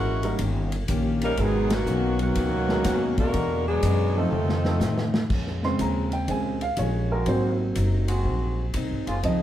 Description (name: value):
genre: jazz, big band swing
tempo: 122 BPM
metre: 4/4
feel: swing 67% on 8ths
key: Bb minor from 5.3 s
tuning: A4 = 440 Hz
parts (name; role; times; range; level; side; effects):
- warm saxophone section; melody; 0.0-5.2 s; Eb3 to Gb5; -27 LUFS; left 2 dB; none
- bright trombone section; second line; 0.0-5.1 s; Cb3 to Gb4; -30 LUFS; right 3 dB; none
- picked plugged-in steel-string acoustic guitar; accompaniment; 0.0-9.4 s; F2 to G4; -33 LUFS; left 4 dB; none
- upright bass; bass; 0.0-9.4 s; Gb1 to A2; -26 LUFS; equal; none
- warm baby grand piano; accompaniment; 0.2-9.4 s; Cb3 to C6; -28 LUFS; right 2 dB; none
- swinging big-band drum kit; drums; 0.2-9.4 s; crash cymbal, hi-hat, kick drum, ride cymbal, snare drum, toms; -31 LUFS; equal; none
- dark trombone section; sustained chords; 7.1-9.2 s; Db3 to Gb4; -33 LUFS; right 1 dB; none
room: moderate large studio reverb, RT60 1.0 s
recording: heard from further back in the room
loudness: -22 LUFS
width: side -12 dB against mid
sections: 0.0-5.3 A section; 5.3-9.4 B section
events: band accent 1.6; drum fill 4.3-5.3; grand piano solo 5.3-9.4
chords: 0.4 Eb7; 1.4 Abm11; 3.3 E9; 4.3 F7; 5.3 Bbm7; 7.3 Ab7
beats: 0.39 0.89 | 1.38 1.87 2.36 2.85 | 3.34 3.83 4.32 4.82 | 5.31 5.80 6.29 6.78 | 7.27 7.76 8.25 8.74 | 9.24